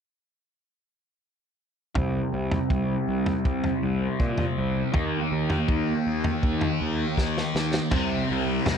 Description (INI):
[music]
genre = psychedelic rock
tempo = 80 BPM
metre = 4/4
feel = straight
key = C minor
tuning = A4 = 440 Hz
[part]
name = thick fuzz guitar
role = riff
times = 1.9-8.8 s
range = C3 to Eb4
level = -26 LUFS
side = equal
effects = distortion, phaser, low-pass filter
[part]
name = fuzz picked electric bass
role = bass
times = 2.0-8.8 s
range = C2 to Bb2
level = -28 LUFS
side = equal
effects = overdrive
[part]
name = crunchy breakbeat drum kit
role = drums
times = 2.0-8.8 s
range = crash cymbal, kick drum, snare drum, toms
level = -28 LUFS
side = equal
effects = none
[sound]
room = little or no reverb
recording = dry, close 1970s-style studio recording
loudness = -23 LUFS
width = side -7 dB against mid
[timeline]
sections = 2.0-7.9 A section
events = filter sweep on distorted electric guitar 2.0-7.9; drum fill 7.2-7.9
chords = 2.0 C5; 4.9 Eb5; 7.9 Cm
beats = | 1.95 2.70 3.45 4.19 | 4.94 5.68 6.43 7.17 | 7.92 8.66